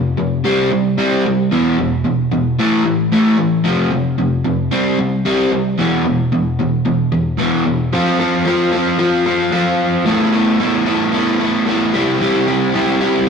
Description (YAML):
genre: rock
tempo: 112 BPM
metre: 4/4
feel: straight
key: unclear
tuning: A4 = 440 Hz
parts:
  - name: crunchy overdriven guitar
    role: solo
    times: 0.0-13.3 s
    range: E2 to A4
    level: -13 LUFS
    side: equal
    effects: none
room: wet stone room reverb, RT60 1.2 s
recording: rough rehearsal-room recording, warm saturation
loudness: -13 LUFS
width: side -6 dB against mid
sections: 0.0-7.9 A section; 7.9-13.3 B section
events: none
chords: 0.4 C5; 1.5 E5; 2.6 A5; 3.6 F5; 4.7 C5; 5.8 E5; 7.9 F; 10.1 Asus2; 11.9 C